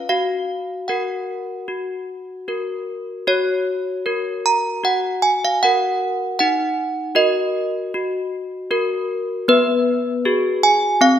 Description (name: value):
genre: classical, tune for handbells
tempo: 77 BPM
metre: 4/4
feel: straight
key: F# major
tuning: A4 = 441 Hz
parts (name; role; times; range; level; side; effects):
- desk bells; solo; 0.0-11.2 s; B3 to A#5; -18 LUFS; equal; none
room: wet scoring stage reverb, RT60 1.6 s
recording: none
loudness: -18 LUFS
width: side -10 dB against mid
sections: 0.0-3.3 A section; 3.3-11.2 A section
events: none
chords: 0.1 F#; 6.4 D#m; 9.5 G#m7/B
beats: | 0.07 0.87 1.67 2.47 | 3.27 4.06 4.84 5.62 | 6.39 7.17 7.94 8.71 | 9.48 10.25 11.02